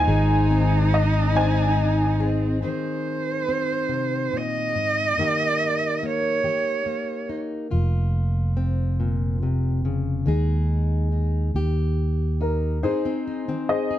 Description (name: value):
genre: acoustic folk-pop ballad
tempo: 47 BPM (dotted quarters)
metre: 6/8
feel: straight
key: Ab major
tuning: A4 = 440 Hz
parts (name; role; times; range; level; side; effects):
- warm upright piano; melody; 0.0-2.6, 12.4-14.0 s; Eb4 to Ab5; -25 LUFS; left 2 dB; none
- warm cello; second line; 0.0-7.3 s; C4 to Eb5; -25 LUFS; right 4 dB; none
- fingerpicked plugged-in steel-string acoustic guitar; accompaniment; 0.0-14.0 s; F2 to Ab4; -27 LUFS; left 3 dB; none
- warm chamber string section; sustained chords; 0.0-2.6 s; C3 to Ab4; -32 LUFS; left 1 dB; none
- fingered electric bass; bass; 0.0-2.6, 7.7-12.8 s; F1 to Eb2; -21 LUFS; equal; none
room: little or no reverb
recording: close, detailed microphones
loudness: -20 LUFS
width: side -12 dB against mid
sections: 0.0-2.6 A section; 2.6-12.8 B section; 12.8-14.0 C section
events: cello solo 2.6-12.8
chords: 0.1 Ab; 5.2 Eb/G; 7.7 Bbmadd9/F; 10.3 Ebsus4; 11.5 Eb; 12.8 Ab